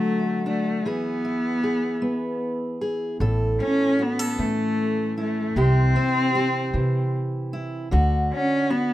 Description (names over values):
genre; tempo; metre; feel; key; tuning
acoustic folk duo or small band; 51 BPM (dotted quarters); 6/8; straight; unclear; A4 = 439 Hz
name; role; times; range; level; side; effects
rich cello; melody; 0.0-8.9 s; A3 to C#4; -24 LUFS; left 1 dB; none
fingerpicked steel-string acoustic guitar; accompaniment; 0.0-8.9 s; A2 to A4; -26 LUFS; equal; none
upright bass; bass; 3.2-8.3 s; A1 to C3; -23 LUFS; equal; none
room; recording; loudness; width
light reverb; minimal, uncompressed stereo recording; -21 LUFS; side -14 dB against mid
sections
0.0-8.9 A section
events
none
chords
0.0 D; 0.9 E; 3.2 A; 5.6 C; 7.9 D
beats
| 0.86 2.04 | 3.21 4.39 | 5.57 6.75 | 7.92